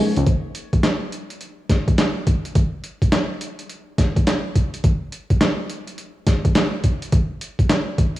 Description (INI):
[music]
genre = R&B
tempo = 105 BPM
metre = 4/4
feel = swing 63% on 16ths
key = none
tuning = none
[part]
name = boom bap sampler-style drum kit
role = drums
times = 0.2-8.2 s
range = handclaps, hi-hat, kick drum, snare drum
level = -18 LUFS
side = equal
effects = none
[sound]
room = light reverb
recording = small room ambience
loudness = -18 LUFS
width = side -15 dB against mid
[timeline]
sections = 0.3-8.2 A section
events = break 0.0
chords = none